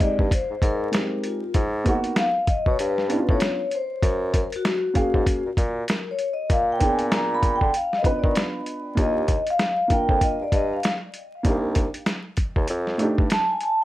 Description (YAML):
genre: hip hop, jazz-hop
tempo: 97 BPM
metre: 4/4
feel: swing 61% on 16ths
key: F dorian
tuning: A4 = 442 Hz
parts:
  - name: vibraphone with soft mallets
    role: melody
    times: 0.0-13.8 s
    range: F4 to Cb6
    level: -24 LUFS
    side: left 2 dB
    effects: tape echo
  - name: dark concert grand piano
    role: accompaniment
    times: 0.0-13.2 s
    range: Ab3 to F5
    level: -26 LUFS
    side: right 1 dB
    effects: none
  - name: boom bap sampler-style drum kit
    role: drums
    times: 0.0-13.8 s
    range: hi-hat, kick drum, snare drum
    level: -23 LUFS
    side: equal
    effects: none
  - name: warm bassoon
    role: bass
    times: 0.2-13.3 s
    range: C2 to Eb3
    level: -26 LUFS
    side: equal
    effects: none
room: light reverb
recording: vinyl crackle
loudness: -20 LUFS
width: side -15 dB against mid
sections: 0.0-13.8 A section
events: vibraphone solo 0.0-13.8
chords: 0.0 Fm7 (rootless); 1.6 Abm9; 2.8 G7#11; 4.0 Gbmaj9; 6.5 Bb7b9; 9.0 Ebmaj7; 11.4 Cm7; 12.7 F13